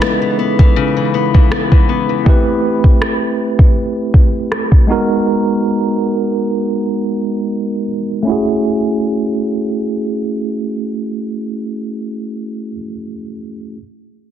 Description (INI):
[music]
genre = contemporary R&B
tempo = 80 BPM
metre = 4/4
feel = swing 54% on 16ths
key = F# dorian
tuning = A4 = 440 Hz
[part]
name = tine electric piano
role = accompaniment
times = 0.0-13.8 s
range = G#3 to B4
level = -17 LUFS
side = right 2 dB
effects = fast stereo tremolo
[part]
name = fingerpicked old ladder-braced acoustic guitar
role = arpeggios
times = 0.0-2.8 s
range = C#3 to E4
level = -18 LUFS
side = left 9 dB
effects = ping-pong delay
[part]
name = smooth R&B drum kit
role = drums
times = 0.0-4.9 s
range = kick drum, rim click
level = -10 LUFS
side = equal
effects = soft clipping on snare
[sound]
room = light reverb, digital ambience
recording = dense, heavily limited modern master, low-pass filter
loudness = -13 LUFS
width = side -10 dB against mid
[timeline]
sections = 0.0-8.3 A section; 8.3-11.3 B section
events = filter sweep 0.0-8.3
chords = 0.0 C#m9; 2.3 Am9; 4.9 G#m9; 8.3 F#m9